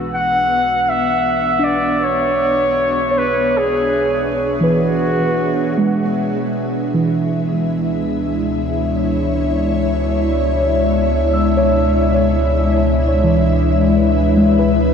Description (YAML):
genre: ambient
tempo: 79 BPM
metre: 4/4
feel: straight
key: unclear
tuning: A4 = 440 Hz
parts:
  - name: ethereal airy pad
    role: sustained chords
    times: 0.0-14.9 s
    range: G#3 to F#5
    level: -19 LUFS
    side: left 2 dB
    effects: ensemble chorus, built-in reverb
  - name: muted felt-like synth keys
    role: arpeggios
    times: 0.0-14.9 s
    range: E3 to E6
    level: -20 LUFS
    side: right 2 dB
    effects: chorus, tape echo
  - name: deep rumbling drone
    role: bass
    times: 0.0-14.9 s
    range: B1 to C#2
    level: -22 LUFS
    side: equal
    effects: built-in reverb
  - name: analog drone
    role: drone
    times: 0.0-14.9 s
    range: B2 to D4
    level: -25 LUFS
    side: equal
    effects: chorus
  - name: warm flugelhorn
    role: melody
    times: 0.2-5.8 s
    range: F#4 to F#5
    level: -18 LUFS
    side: equal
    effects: tape echo
room: wet huge ambient reverb, RT60 7.4 s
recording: worn, warbling old tape, cassette tape, warbly pitch drift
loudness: -14 LUFS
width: side -7 dB against mid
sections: 0.0-14.9 A section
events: fade-in on ambient pad 0.0-14.9; fade-in on synth drone 0.0-14.9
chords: 0.0 Bm; 6.3 C#m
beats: | 0.14 0.90 1.66 2.42 | 3.18 3.95 4.71 5.49 | 6.26 7.03 7.80 8.57 | 9.33 10.09 10.84 11.60 | 12.36 13.12 13.87 14.63